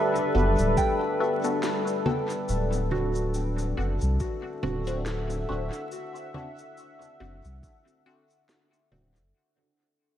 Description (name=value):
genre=ambient dub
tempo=70 BPM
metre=4/4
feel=swing 56% on 16ths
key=D mixolydian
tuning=A4 = 440 Hz
part: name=deep dark ambient pad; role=sustained chords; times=0.0-9.3 s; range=G3 to F#5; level=-29 LUFS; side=left 1 dB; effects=chorus, built-in reverb
part: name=soft synth bell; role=arpeggios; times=0.0-9.4 s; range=F#4 to B5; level=-34 LUFS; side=right 1 dB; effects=chorus, ping-pong delay
part: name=electronic shaker, snare drum and congas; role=drums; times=0.2-9.3 s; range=none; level=-36 LUFS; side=right 1 dB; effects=dub echo
part: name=filtered dub chord stab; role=stabs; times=0.3-9.3 s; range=B3 to A4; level=-34 LUFS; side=left 2 dB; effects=phaser, dub echo
part: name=soft dub sub bass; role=bass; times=0.3-9.3 s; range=D1 to C2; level=-28 LUFS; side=equal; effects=none
part: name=electronic kick drum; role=drums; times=0.8-7.8 s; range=none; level=-30 LUFS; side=equal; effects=none
room=wet plate reverb, RT60 3.7 s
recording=dreamy mix soaked in reverb, vinyl crackle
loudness=-24 LUFS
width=side -11 dB against mid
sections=0.0-9.3 A section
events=fade-out 0.2-9.3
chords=0.0 Gmaj9/D; 2.5 D7